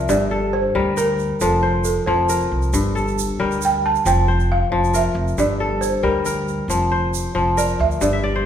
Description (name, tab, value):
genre	west african traditional, West African string and xylophone music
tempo	91 BPM (dotted quarters)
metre	12/8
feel	straight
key	unclear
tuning	A4 = 441 Hz
part	balafon	melody	0.0-8.4 s	A4 to A5	-22 LUFS	right 2 dB	none
part	kora	arpeggios	0.0-8.5 s	G2 to E5	-20 LUFS	left 2 dB	none
part	upright bass	bass	0.0-8.5 s	F1 to D2	-23 LUFS	right 1 dB	none
part	egg shaker	percussion	0.1-8.1 s	none	-31 LUFS	right 8 dB	none
room	wet recital hall reverb, RT60 1.6 s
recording	recorded in a church or concert hall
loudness	-17 LUFS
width	side -9 dB against mid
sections	0.0-8.5 A section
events	balafon solo 0.0-8.5; kora fill 8.1-8.5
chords	0.1 Gm; 1.4 F; 2.7 Gm; 4.1 F5; 5.4 Gm; 6.7 F5